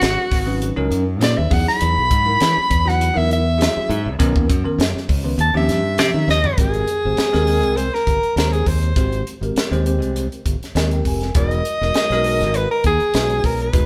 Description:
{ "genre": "electric jazz fusion", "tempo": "101 BPM", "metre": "4/4", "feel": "swing 54% on 16ths", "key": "Ab major from 6.6 s", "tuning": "A4 = 440 Hz", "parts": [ { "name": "breathy soprano saxophone", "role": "melody", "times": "0.0-13.9 s", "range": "F#4 to B5", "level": "-22 LUFS", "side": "equal", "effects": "none" }, { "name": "bell-like tine electric piano", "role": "accompaniment", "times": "0.0-13.9 s", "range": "D#3 to Ab5", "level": "-26 LUFS", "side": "equal", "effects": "none" }, { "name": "modern bright fingered electric bass", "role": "bass", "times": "0.0-13.9 s", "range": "E1 to E3", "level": "-23 LUFS", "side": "equal", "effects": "none" }, { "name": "crisp fusion drum kit", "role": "drums", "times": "0.0-13.9 s", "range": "hi-hat, kick drum, snare drum, toms", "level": "-24 LUFS", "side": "equal", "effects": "none" } ], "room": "moderate stone room reverb, RT60 1.3 s", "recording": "band playing live in one room", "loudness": "-18 LUFS", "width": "mono", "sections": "0.0-6.6 A section; 6.6-13.9 B section", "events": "soprano saxophone solo 0.0-6.6; drum fill 6.3; tine electric piano fill 10.5-11.4", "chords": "0.0 C#9sus4; 1.5 Emaj9; 4.2 Bmaj9; 5.4 D#13; 6.6 Abmaj9; 11.4 Emaj9#11", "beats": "0.03 0.62 1.22 | 1.82 2.41 3.01 3.60 | 4.20 4.80 5.39 5.99 | 6.58 7.18 7.78 8.37 | 8.97 9.57 10.16 10.76 | 11.36 11.95 12.55 13.14 | 13.74" }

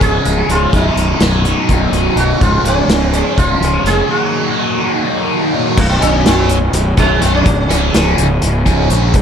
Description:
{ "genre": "psychedelic rock", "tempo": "250 BPM (eighths)", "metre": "7/8", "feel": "straight", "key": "B lydian", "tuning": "A4 = 440 Hz", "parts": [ { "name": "sitar", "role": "melody", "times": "0.0-8.4 s", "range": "F#3 to G#4", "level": "-18 LUFS", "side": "right 2 dB", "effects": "dub echo" }, { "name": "biting overdriven guitar", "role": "riff", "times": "0.0-9.1 s", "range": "B1 to D#4", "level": "-15 LUFS", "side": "equal", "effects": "phaser, dub echo" }, { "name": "fuzz fingered electric bass", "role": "bass", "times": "0.0-9.2 s", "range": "B0 to A#1", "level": "-15 LUFS", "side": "equal", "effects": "overdrive" }, { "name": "vintage drum kit", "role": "drums", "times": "0.0-9.2 s", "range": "crash cymbal, hi-hat, kick drum, snare drum", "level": "-17 LUFS", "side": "equal", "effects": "none" } ], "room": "studio ambience", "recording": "echo-heavy mix", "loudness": "-11 LUFS", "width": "side -8 dB against mid", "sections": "0.0-5.8 A section; 5.8-9.2 B section", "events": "break 4.1-5.8; sitar solo 5.8-9.2", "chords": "0.0 C#; 0.7 B; 2.4 C#; 4.1 D#m; 5.8 Bsus2; 7.5 C#", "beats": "0.01 0.25 0.49 | 0.73 0.97 1.22 1.46 1.70 1.94 2.18 | 2.42 2.66 2.90 3.14 3.38 3.62 3.86 | 4.10 4.34 4.58 4.82 5.06 5.30 5.54 | 5.78 6.02 6.26 6.50 6.74 6.98 7.22 | 7.46 7.70 7.94 8.18 8.42 8.66 8.90 | 9.14" }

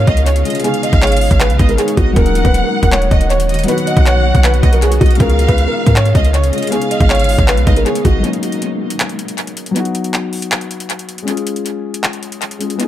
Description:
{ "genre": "hip hop, trap", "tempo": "158 BPM", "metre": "4/4", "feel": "half-time", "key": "Eb minor", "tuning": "A4 = 440 Hz", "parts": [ { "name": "dark concert grand piano", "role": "melody", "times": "0.0-8.2 s", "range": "Gb4 to Eb5", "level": "-19 LUFS", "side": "equal", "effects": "tape echo" }, { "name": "warm symphonic violin section", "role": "second line", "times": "0.0-8.2 s", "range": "Db5 to Gb5", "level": "-21 LUFS", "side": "right 1 dB", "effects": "tape echo" }, { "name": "dark grand piano", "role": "accompaniment", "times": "0.0-12.9 s", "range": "Gb3 to Ab4", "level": "-21 LUFS", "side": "left 4 dB", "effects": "none" }, { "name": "granular cloud pad", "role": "sustained chords", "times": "0.0-8.2 s", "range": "Gb4", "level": "-23 LUFS", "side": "equal", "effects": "built-in reverb" }, { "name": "clean 808-style bass", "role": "bass", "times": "0.0-8.2 s", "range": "Eb1 to Ab2", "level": "-13 LUFS", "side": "equal", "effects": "none" }, { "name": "trap drum kit", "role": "drums", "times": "0.1-12.9 s", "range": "handclaps, hi-hat, kick drum", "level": "-17 LUFS", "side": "equal", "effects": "overdrive, tape echo" } ], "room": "light reverb, small room ambience", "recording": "echo-heavy mix", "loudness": "-11 LUFS", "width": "side -12 dB against mid", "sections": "0.0-8.2 A section; 8.2-12.9 B section", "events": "break 8.2-12.9", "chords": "0.0 Db; 0.6 Abm; 2.2 Ebm7; 3.7 B; 5.2 Db; 6.7 Abm; 8.2 Ebm7; 9.8 B; 11.3 Db", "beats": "0.26 | 0.64 1.02 1.40 1.78 | 2.16 2.54 2.92 3.30 | 3.68 4.06 4.44 4.82 | 5.20 5.58 5.96 6.34 | 6.72 7.10 7.48 7.86 | 8.24 8.62 9.00 9.38 | 9.76 10.14 10.52 10.90 | 11.28 11.66 12.04 12.42 | 12.80" }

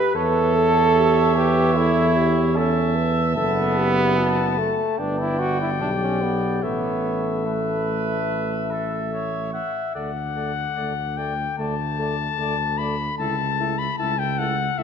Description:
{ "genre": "classical, brass quintet", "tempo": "74 BPM", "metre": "4/4", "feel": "straight", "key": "D major", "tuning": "A4 = 440 Hz", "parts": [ { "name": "clear trumpet", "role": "second line", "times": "0.0-14.8 s", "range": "A4 to F#5", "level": "-30 LUFS", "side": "right 5 dB", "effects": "none" }, { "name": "bright trombone", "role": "accompaniment", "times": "0.0-14.8 s", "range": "A3 to B4", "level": "-24 LUFS", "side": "right 3 dB", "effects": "none" }, { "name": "warm French horn", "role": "accompaniment", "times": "0.0-14.8 s", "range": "E4 to B4", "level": "-27 LUFS", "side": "left 5 dB", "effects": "none" }, { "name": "clear trumpet", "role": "melody", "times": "0.1-14.8 s", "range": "E5 to B5", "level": "-27 LUFS", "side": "left 8 dB", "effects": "none" }, { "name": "mellow tuba", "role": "bass", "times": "0.2-14.8 s", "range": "F#1 to E2", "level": "-25 LUFS", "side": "right 3 dB", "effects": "none" } ], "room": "wet scoring stage reverb, RT60 1.5 s", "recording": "none", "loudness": "-19 LUFS", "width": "side -7 dB against mid", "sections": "0.0-10.0 A section; 10.0-14.8 B section", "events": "none", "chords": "0.2 A7/E; 3.4 Gmaj13/F#; 5.0 G; 6.6 A; 10.0 D; 13.2 A/C#", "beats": "| 0.15 0.96 1.76 2.56 | 3.37 4.18 4.99 5.81 | 6.63 7.47 8.30 9.13 | 9.95 10.77 11.59 12.39 | 13.19 13.99 14.79" }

